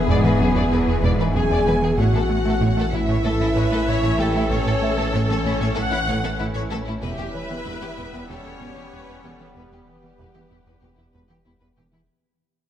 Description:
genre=cinematic, hybrid orchestral and electronic film score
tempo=95 BPM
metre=4/4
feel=straight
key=unclear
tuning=A4 = 440 Hz
part: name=warm studio violin section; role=second line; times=0.0-11.7 s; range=B4 to G#5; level=-31 LUFS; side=equal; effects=none
part: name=rich symphonic viola section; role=accompaniment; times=0.0-11.8 s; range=E4 to F#5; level=-28 LUFS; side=left 1 dB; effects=none
part: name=bright trombone section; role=sustained chords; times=0.0-11.8 s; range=D3 to C#4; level=-35 LUFS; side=right 2 dB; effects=none
part: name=ethereal airy pad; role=sustained chords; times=0.0-12.1 s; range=E3 to G#5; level=-31 LUFS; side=left 1 dB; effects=ensemble chorus, built-in reverb
part: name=mellow French horn section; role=sustained chords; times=0.0-11.8 s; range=B3 to G#4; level=-26 LUFS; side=left 2 dB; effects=none
part: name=rubbery square bass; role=riff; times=0.0-12.0 s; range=E2 to A3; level=-26 LUFS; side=right 2 dB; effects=none
part: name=saturated sub bass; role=bass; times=0.0-12.1 s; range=E1 to A1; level=-28 LUFS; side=equal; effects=none
part: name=warm symphonic violin section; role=melody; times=0.1-12.0 s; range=E4 to D5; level=-32 LUFS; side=left 4 dB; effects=none
part: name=rich symphonic cello section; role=bass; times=0.1-12.0 s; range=E2 to A2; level=-26 LUFS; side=right 1 dB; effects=none
part: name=warm studio double bass section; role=bass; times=0.1-11.8 s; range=E1 to A1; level=-27 LUFS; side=right 2 dB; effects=none
part: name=dark grand piano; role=texture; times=0.1-12.1 s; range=C#4 to G5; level=-35 LUFS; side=left 1 dB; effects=tape echo
room=moderate scoring stage reverb, RT60 1.9 s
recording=none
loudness=-18 LUFS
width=side -10 dB against mid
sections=0.0-12.1 A section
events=fade-out 0.0-12.1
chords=0.0 E7; 2.0 A; 7.0 Em

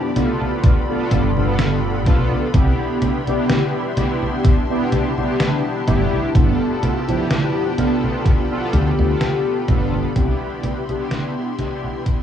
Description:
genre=vaporwave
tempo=63 BPM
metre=4/4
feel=swing 54% on 16ths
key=C major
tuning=A4 = 440 Hz
part: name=warm velvety synth lead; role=melody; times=0.0, 5.9-9.9 s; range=E4 to G4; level=-28 LUFS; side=left 2 dB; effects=chorus, tape echo
part: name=mellow synth brass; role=accompaniment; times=0.0-12.2 s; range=F3 to A4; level=-21 LUFS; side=equal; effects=analog chorus, dub echo
part: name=clear studio string section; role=sustained chords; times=0.0-12.2 s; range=G4 to C6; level=-30 LUFS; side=left 3 dB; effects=none
part: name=detuned 8-bit digital drum machine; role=drums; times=0.2-12.2 s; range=congas, hi-hat, snare drum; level=-23 LUFS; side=right 1 dB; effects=dub echo
part: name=electronic kick drum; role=drums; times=0.6-12.2 s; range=none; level=-16 LUFS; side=equal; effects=none
part: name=woody fretless electric bass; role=bass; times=1.1-10.3 s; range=G1 to D2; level=-18 LUFS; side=equal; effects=analog chorus
room=light reverb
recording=echo-heavy mix, cassette tape, small room reverb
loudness=-16 LUFS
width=side -9 dB against mid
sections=0.0-12.2 A section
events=fade-out 7.6-12.2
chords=0.0 G9; 2.5 Cmaj7; 6.3 G9; 10.2 Cmaj7

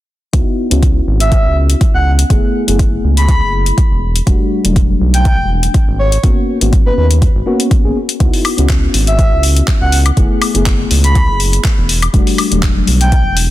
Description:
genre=deep house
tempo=122 BPM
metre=4/4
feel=swing 54% on 16ths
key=C# minor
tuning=A4 = 440 Hz
part: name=mellow FM electric piano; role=stabs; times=0.3-13.5 s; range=F#3 to G#4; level=-18 LUFS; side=left 3 dB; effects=chorus, sidechain pumping, low-pass filter, ping-pong delay
part: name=round analog bass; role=bass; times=0.3-13.5 s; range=E1 to D#2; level=-13 LUFS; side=equal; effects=sidechain pumping
part: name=deep house drum kit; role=drums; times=0.3-13.5 s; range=handclaps, hi-hat, woodblock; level=-18 LUFS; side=left 3 dB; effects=overdrive
part: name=electronic kick drum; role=drums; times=0.3-13.2 s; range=none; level=-12 LUFS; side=equal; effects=overdrive
part: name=breathy flute-like synth lead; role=melody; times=1.2-13.4 s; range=B4 to B5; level=-19 LUFS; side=right 1 dB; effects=chorus, tape echo
room=little or no reverb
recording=dense, heavily limited modern master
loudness=-10 LUFS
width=side -15 dB against mid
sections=0.3-13.5 A section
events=filter sweep on FM electric piano 0.3-13.5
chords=0.3 C#m11; 2.3 F#m11; 4.0 Em11; 6.0 G#m11; 8.2 C#m11; 10.2 F#m11; 11.9 Em11

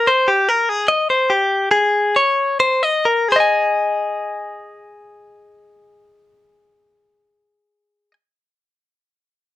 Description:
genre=rock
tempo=253-299 BPM (eighths)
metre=7/8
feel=straight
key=Ab major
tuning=A4 = 439 Hz
part: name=direct-recorded clean electric guitar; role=solo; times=0.0-8.1 s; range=G4 to Ab5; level=-14 LUFS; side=left 2 dB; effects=none
room=moderate studio reverb, RT60 0.5 s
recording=none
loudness=-14 LUFS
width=side -14 dB against mid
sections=0.3-3.3 A section; 3.3-6.6 B section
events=slowing down 0.3-3.3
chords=0.3 Abmaj7; 1.7 Db5; 3.3 Ab5

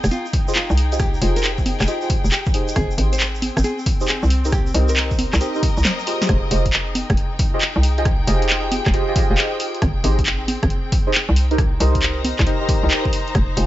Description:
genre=UK garage, two-step garage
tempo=136 BPM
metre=4/4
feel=swing 67% on 16ths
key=F minor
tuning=A4 = 440 Hz
part: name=ethereal airy pad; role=sustained chords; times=0.0-6.3 s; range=G5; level=-39 LUFS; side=right 1 dB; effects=none
part: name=hollow knocking FM bass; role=bass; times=0.0-13.7 s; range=F1 to C2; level=-19 LUFS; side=equal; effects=sidechain pumping
part: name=punchy analog drum machine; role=drums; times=0.0-13.7 s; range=congas, handclaps, hi-hat, rim click, snare drum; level=-22 LUFS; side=equal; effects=none
part: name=tube shaker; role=percussion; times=0.0-6.3 s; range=none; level=-35 LUFS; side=right 3 dB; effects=none
part: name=dark chamber string section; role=texture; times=0.0-13.7 s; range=C4 to Bb5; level=-29 LUFS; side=left 2 dB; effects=sidechain pumping
part: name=nylon-string guitar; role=melody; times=0.1-6.0 s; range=F4 to C5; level=-30 LUFS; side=equal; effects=digital delay
part: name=electronic kick drum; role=drums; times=0.3-13.5 s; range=none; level=-20 LUFS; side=equal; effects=none
part: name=deep mellow chord stab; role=stabs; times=0.5-13.7 s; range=Eb4 to Eb5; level=-25 LUFS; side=right 1 dB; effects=chorus, phaser, digital delay
room=digital ambience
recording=nothing above 7.7 kHz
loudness=-16 LUFS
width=side -14 dB against mid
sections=0.0-6.3 A section; 6.3-13.7 B section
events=drum fill 5.8-6.3; drop 6.3-13.7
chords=0.0 Fm9; 2.8 Abmaj7; 4.3 Cm7; 6.3 Fm9; 9.8 Abmaj7; 11.4 Cm7

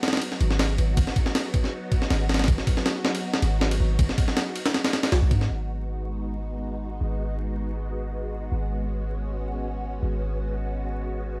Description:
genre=drum and bass, jungle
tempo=159 BPM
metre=4/4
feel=swing 53% on 16ths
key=G# minor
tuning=A4 = 439 Hz
part: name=soft string machine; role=sustained chords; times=0.0-11.4 s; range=F#3 to F#4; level=-36 LUFS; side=equal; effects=phaser, ensemble chorus, vintage 12-bit sampler grit
part: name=breakbeat sampler-style drum kit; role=drums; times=0.0-5.5 s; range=kick drum, ride cymbal, snare drum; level=-26 LUFS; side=equal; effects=small room ambience
part: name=warm 808-style bass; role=bass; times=0.4-11.4 s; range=G#1 to G#2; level=-28 LUFS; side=equal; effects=none
room=digital ambience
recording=vinyl crackle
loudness=-26 LUFS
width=mono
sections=0.0-5.5 A section; 5.5-11.4 B section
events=drop 0.0-5.5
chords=0.0 B/G#; 5.5 G#m7

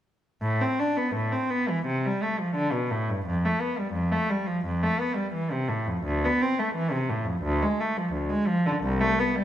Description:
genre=classical, baroque-style suite movement for unaccompanied cello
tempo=86 BPM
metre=4/4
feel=rubato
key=A minor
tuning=A4 = 440 Hz
part: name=rich cello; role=solo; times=0.4-9.4 s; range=C2 to D4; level=-24 LUFS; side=equal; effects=none
room=moderate recital hall reverb, RT60 1.4 s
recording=none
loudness=-24 LUFS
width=side -11 dB against mid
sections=0.4-9.4 A section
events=none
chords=none

